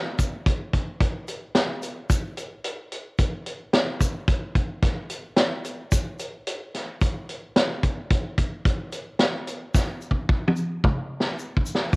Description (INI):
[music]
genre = progressive instrumental, progressive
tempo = 110 BPM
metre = 7/4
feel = straight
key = none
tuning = none
[part]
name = vintage drum kit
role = drums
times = 0.2-12.0 s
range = hi-hat, kick drum, snare drum, toms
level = -22 LUFS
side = equal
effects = cassette tape
[part]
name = egg shaker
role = percussion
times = 0.2-12.0 s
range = none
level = -38 LUFS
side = left 2 dB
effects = none
[sound]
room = light reverb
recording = home recording on cassette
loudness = -23 LUFS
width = side -31 dB against mid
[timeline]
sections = 0.0-12.0 A section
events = drum fill 9.7-12.0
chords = none